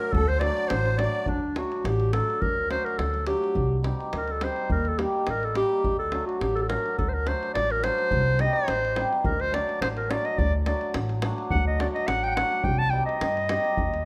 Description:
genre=balkan folk, Balkan wedding band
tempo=106 BPM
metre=2/4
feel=swing 54% on 16ths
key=D phrygian dominant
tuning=A4 = 438 Hz
part: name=clear clarinet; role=melody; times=0.0-14.1 s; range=D4 to A5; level=-28 LUFS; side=equal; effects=none
part: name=musette accordion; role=second line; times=0.0-1.3 s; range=A4 to D5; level=-35 LUFS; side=equal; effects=none
part: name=cimbalom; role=accompaniment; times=0.0-13.8 s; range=F#3 to G4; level=-35 LUFS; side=equal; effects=none
part: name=davul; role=percussion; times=0.0-14.0 s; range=none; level=-35 LUFS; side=equal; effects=none
part: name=upright bass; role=bass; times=0.1-14.1 s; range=A1 to G2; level=-30 LUFS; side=equal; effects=none
room=light reverb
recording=close, detailed microphones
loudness=-26 LUFS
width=mono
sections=0.0-1.3 A section; 1.3-14.1 B section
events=clarinet solo 1.3-14.1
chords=0.0 D; 3.6 Cm; 4.7 Eb; 5.8 D; 8.1 Cm; 9.2 D; 12.6 Cm

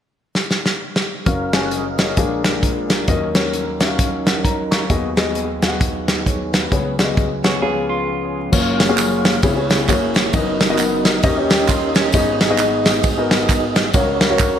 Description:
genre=uptempo gospel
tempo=132 BPM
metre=4/4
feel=swing 60% on 8ths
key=F# major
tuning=A4 = 441 Hz
part: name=warm soul drum kit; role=drums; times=0.4-14.5 s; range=crash cymbal, hi-hat, kick drum, ride cymbal, snare drum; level=-18 LUFS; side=equal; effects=gated reverb
part: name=dark concert grand piano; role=accompaniment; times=1.3-14.6 s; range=F#1 to C#6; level=-20 LUFS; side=left 4 dB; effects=none
part: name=mellow tonewheel organ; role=sustained chords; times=1.3-14.6 s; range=D#2 to F#5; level=-23 LUFS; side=right 3 dB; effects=slow rotary speaker, chorus vibrato
part: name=clean electric guitar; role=second line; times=7.4-8.5, 11.5-12.4 s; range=C#4 to G#4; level=-26 LUFS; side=right 7 dB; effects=spring reverb
part: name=tambourine and handclaps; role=percussion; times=8.5-14.5 s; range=none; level=-27 LUFS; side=right 3 dB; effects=none
room=moderate plate reverb, RT60 2.3 s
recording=bright 1980s-style digital production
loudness=-15 LUFS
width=side -9 dB against mid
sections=0.0-1.3 A section; 1.3-8.5 B section; 8.5-14.6 C section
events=drum fill 0.4-1.3; break 7.6-8.5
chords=0.0 N.C.; 1.3 F#maj7; 2.2 A#7; 3.1 D#m7; 4.9 G#m7/D#; 6.7 C#7sus4; 7.6 C#7; 8.5 F#maj7; 9.4 C#m7; 9.9 F#9; 10.3 Bmaj7/F#; 11.2 D#7; 12.1 G#m7; 13.9 F#/C#

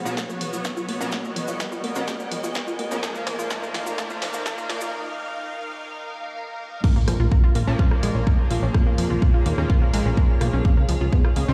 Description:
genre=melodic techno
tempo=126 BPM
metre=4/4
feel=straight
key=Bb phrygian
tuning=A4 = 436 Hz
part: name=lush unison pad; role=sustained chords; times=0.0-11.5 s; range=Bb3 to F5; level=-36 LUFS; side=equal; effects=chorus, phaser, sidechain pumping
part: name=analog pluck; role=arpeggios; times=0.0-11.5 s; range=F3 to F4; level=-33 LUFS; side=equal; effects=chorus, cassette tape, sidechain pumping, delay
part: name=riser, swell and impact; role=sound effects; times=0.0-8.7 s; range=none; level=-35 LUFS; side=equal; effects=none
part: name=granular cloud pad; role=texture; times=0.0-11.5 s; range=B3 to Ab5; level=-39 LUFS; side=equal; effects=built-in reverb, sidechain pumping
part: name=sync-sweep polysynth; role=stabs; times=0.1-11.5 s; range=Bb2 to Db4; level=-33 LUFS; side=equal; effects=chorus, sidechain pumping, delay
part: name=cabasa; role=percussion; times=0.1-4.9 s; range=none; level=-42 LUFS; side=equal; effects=none
part: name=electronic kick drum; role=drums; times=0.2-11.2 s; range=none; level=-21 LUFS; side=equal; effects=high-pass filter on kick, high-pass filter on room
part: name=punchy analog drum machine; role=drums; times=0.2-11.5 s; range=crash cymbal, hi-hat, rim click, snare drum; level=-35 LUFS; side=equal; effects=high-pass filter on hats, high-pass filter on snare, high-pass filter on cymbals, high-pass filter on room
part: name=plucky analog bass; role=bass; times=7.0-11.5 s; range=Bb1 to F2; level=-25 LUFS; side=equal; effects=sidechain pumping
room=little or no reverb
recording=played on a big sound system in a bare room, stone room reverb, high-pass filter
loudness=-23 LUFS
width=mono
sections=0.0-6.8 A section; 6.8-11.5 B section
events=build-up 0.0-6.8; drum fill 0.0-4.9; riser 0.0-4.9; filter sweep on synth arpeggio sound 0.0-6.8; break 4.9-6.8; swell 6.1-6.8; drop 6.8-11.5; impact 6.8-8.7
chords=0.0 B; 3.0 Eb; 6.8 Bbm; 10.6 Dbadd9

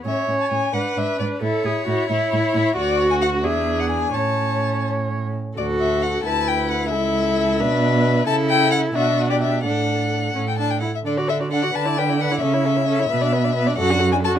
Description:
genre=quick classical-period movement for string quartet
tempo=88 BPM (dotted quarters)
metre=6/8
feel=straight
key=A major, D major from 5.6 s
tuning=A4 = 438 Hz
part: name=warm violin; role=second line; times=0.0-14.4 s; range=C#4 to D5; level=-26 LUFS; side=left 4 dB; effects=none
part: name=rich cello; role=bass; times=0.0-14.4 s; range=C#2 to D3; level=-23 LUFS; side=right 4 dB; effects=none
part: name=warm violin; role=melody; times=0.1-14.3 s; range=C#5 to A5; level=-23 LUFS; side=left 6 dB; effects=none
part: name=rich viola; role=accompaniment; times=0.1-14.4 s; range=B3 to C#5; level=-24 LUFS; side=right 2 dB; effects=none
room=light reverb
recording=close, detailed microphones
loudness=-18 LUFS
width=side -9 dB against mid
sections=0.0-5.6 A section; 5.6-14.4 B section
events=none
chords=0.1 A; 0.7 G#m7b5; 1.4 A; 2.8 D; 3.4 E7; 4.2 A; 5.6 D; 6.3 E5/D; 6.9 A/C#; 7.6 Bm; 8.3 A/C#; 9.0 Bm; 9.6 D/A; 10.3 N.C.; 11.0 D; 11.7 E5/D; 12.4 A/C#; 13.1 Bm; 13.8 D/F#

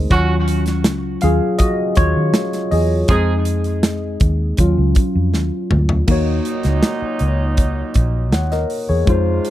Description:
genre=lush 1970s-style soul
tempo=80 BPM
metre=4/4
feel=straight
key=Eb dorian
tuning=A4 = 440 Hz
part: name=tine electric piano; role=accompaniment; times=0.0-9.5 s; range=Gb3 to Gb5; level=-20 LUFS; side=left 2 dB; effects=overdrive, wide subtle chorus
part: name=vintage muted fingered electric bass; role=bass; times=0.0-9.4 s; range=Bb1 to Eb3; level=-18 LUFS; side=equal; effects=none
part: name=warm horn section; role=stabs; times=0.1-9.5 s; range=Bb2 to Ab4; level=-24 LUFS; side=right 4 dB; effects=tape echo
part: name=modern studio drum kit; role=drums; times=0.1-9.5 s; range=crash cymbal, hi-hat, kick drum, snare drum, toms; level=-18 LUFS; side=equal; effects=none
room=little or no reverb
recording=dry, close 1970s-style studio recording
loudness=-15 LUFS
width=side -13 dB against mid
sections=0.0-6.1 A section; 6.1-9.5 B section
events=tine electric piano solo 0.0-6.1; drum fill 5.3-6.1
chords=0.1 Ebm7; 3.1 Fm7; 4.6 Ebm7

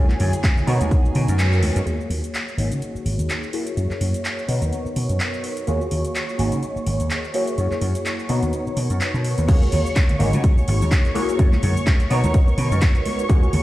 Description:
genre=filtered disco house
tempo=126 BPM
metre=4/4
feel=swing 56% on 16ths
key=unclear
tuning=A4 = 440 Hz
part: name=funky polysynth comp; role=accompaniment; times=0.0-13.6 s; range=Bb3 to Db5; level=-26 LUFS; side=equal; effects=chorus, phaser, sidechain pumping, low-pass filter
part: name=muted symphonic violin section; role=sustained chords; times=0.0-13.6 s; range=Ab4 to Db6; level=-32 LUFS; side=equal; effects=vintage 12-bit sampler grit, sidechain pumping, low-pass filter
part: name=vintage slap bass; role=bass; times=0.0-13.6 s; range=Ab1 to Db3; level=-21 LUFS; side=equal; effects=sidechain pumping, low-pass filter
part: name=house drum kit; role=drums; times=0.1-13.6 s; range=crash cymbal, handclaps, hi-hat, shaker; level=-29 LUFS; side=equal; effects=sidechain pumping on hats, sidechain pumping on perc, sidechain pumping on cymbals
part: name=congas and egg shaker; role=percussion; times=0.1-1.8, 9.5-13.6 s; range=none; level=-29 LUFS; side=right 1 dB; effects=sidechain pumping on perc, low-pass filter on perc
part: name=electronic kick drum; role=drums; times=0.4-1.0, 9.5-13.4 s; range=none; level=-16 LUFS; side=equal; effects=none
room=light reverb, digital ambience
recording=played on a big sound system in a bare room, stone room reverb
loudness=-18 LUFS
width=side -16 dB against mid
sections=0.0-1.9 A section; 1.9-9.5 B section; 9.5-13.6 C section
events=kick drops out 1.4-1.9; band accent 1.4; filter sweep 1.9-9.5; drop 9.5-13.6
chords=0.0 Gb9; 0.7 Bmaj9; 1.9 Ebm11; 2.6 Ab9sus4; 3.5 Gb9; 4.5 Bmaj9; 5.7 Ebm11; 6.4 Ab9sus4; 7.3 Gb9; 8.3 Bmaj9; 9.5 Ebm11; 10.2 Ab9sus4; 11.2 Gb9; 12.1 Bmaj9

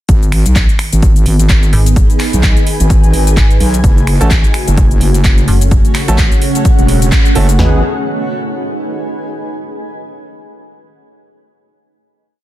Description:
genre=bass house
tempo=128 BPM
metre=4/4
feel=swing 58% on 16ths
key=G# phrygian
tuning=A4 = 440 Hz
part: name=sweeping resonant pad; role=sustained chords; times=0.1-7.8 s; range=C#3 to G#4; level=-22 LUFS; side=left 1 dB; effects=chorus, sidechain pumping
part: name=wobble bass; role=bass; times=0.1-7.8 s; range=E1 to B1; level=-11 LUFS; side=equal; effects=chorus, overdrive, sidechain pumping
part: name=house drum kit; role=drums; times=0.1-7.7 s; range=kick drum, snare drum, toms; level=-11 LUFS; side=equal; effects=studio reverb
part: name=house drum kit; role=drums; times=0.1-7.6 s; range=finger snaps, handclaps, hi-hat, shaker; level=-19 LUFS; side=equal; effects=studio reverb, soft clipping on snare
part: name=granular cloud pad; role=texture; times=1.2-9.4 s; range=A3 to G#5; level=-20 LUFS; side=right 1 dB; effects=built-in reverb, sidechain pumping
part: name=metallic FM bass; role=bass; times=1.7-5.8 s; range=F#1 to G#1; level=-11 LUFS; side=equal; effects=overdrive, sidechain pumping
part: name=warm grand piano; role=stabs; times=4.2-7.8 s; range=A3 to B4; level=-21 LUFS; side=right 4 dB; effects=sidechain pumping, digital delay
room=little or no reverb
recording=dense, heavily limited modern master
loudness=-8 LUFS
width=side -14 dB against mid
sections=0.1-7.6 drop; 7.6-9.5 final chord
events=drop 0.1-7.6; band accent 7.1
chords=0.1 G#m; 3.8 F#m; 7.6 G#m

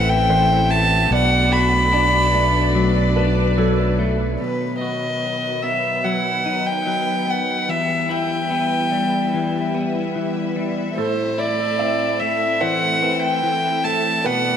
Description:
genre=rock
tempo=73 BPM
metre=4/4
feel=straight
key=unclear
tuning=A4 = 442 Hz
part: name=warm violin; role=melody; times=0.0-14.6 s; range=B4 to B5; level=-20 LUFS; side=equal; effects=tape echo
part: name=rich symphonic string section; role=sustained chords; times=0.0-14.6 s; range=D#3 to E5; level=-27 LUFS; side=right 1 dB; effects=none
part: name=clean electric guitar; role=arpeggios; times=0.0-14.6 s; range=E2 to F#4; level=-23 LUFS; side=left 3 dB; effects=analog chorus, tape echo
part: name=felt-muted upright piano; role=arpeggios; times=0.0-4.4, 11.0-14.6 s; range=A4 to E5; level=-27 LUFS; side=right 4 dB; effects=tape echo
part: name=growling fingered electric bass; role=bass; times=0.0-4.4 s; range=A1 to B1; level=-20 LUFS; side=right 1 dB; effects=overdrive
room=wet plate reverb, RT60 3.2 s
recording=dreamy mix soaked in reverb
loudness=-17 LUFS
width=side -8 dB against mid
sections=0.0-4.4 A section; 4.4-14.6 A section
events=none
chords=0.0 Am; 1.1 Bm7; 4.4 B; 7.7 Em; 11.0 Am

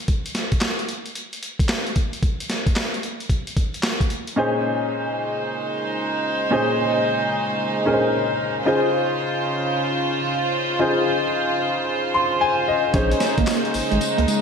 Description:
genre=R&B, new jack swing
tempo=112 BPM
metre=4/4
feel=swing 65% on 16ths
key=unclear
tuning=A4 = 441 Hz
part: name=boom bap sampler-style drum kit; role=drums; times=0.1-4.4, 12.9-14.4 s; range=handclaps, hi-hat, kick drum, snare drum, tambourine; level=-22 LUFS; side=equal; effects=none
part: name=clear concert grand piano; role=accompaniment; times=4.4-14.4 s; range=Bb2 to C6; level=-22 LUFS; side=left 2 dB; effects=none
part: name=warm studio string section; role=sustained chords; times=4.4-14.4 s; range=Db3 to C5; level=-23 LUFS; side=right 2 dB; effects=none
part: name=warm sub bass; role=bass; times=12.9-14.3 s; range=Ab1 to Db2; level=-23 LUFS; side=equal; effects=none
part: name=twelve-string electric guitar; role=riff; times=13.1-14.4 s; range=Ab3 to Db4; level=-23 LUFS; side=right 3 dB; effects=lush chorus
room=wet lush hall reverb, RT60 1.6 s, digital ambience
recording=big arena sound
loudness=-19 LUFS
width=side -6 dB against mid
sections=0.0-4.4 A section; 4.4-14.4 B section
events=grand piano fill 11.9-12.9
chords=0.0 N.C.; 4.4 Bbm11; 8.7 Dbmaj7; 12.9 Bbm11

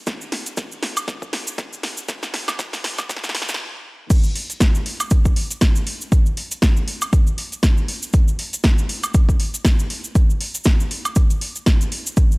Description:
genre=house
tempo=119 BPM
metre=4/4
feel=swing 57% on 16ths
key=none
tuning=none
part: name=deep house drum kit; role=drums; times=0.1-12.3 s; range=crash cymbal, hi-hat, snare drum, woodblock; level=-24 LUFS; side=equal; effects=overdrive
part: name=electronic kick drum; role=drums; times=0.1-12.3 s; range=none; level=-16 LUFS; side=equal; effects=overdrive
part: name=cabasa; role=percussion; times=0.1-12.4 s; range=none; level=-29 LUFS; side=right 1 dB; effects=none
room=little or no reverb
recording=dry, gritty hardware recording, vinyl crackle, high-pass filter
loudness=-17 LUFS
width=side -27 dB against mid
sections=0.0-4.1 A section; 4.1-12.4 B section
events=build-up 0.0-4.1; drum fill 0.0-3.6; stop 3.6-4.1; drop 4.1-12.4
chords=none

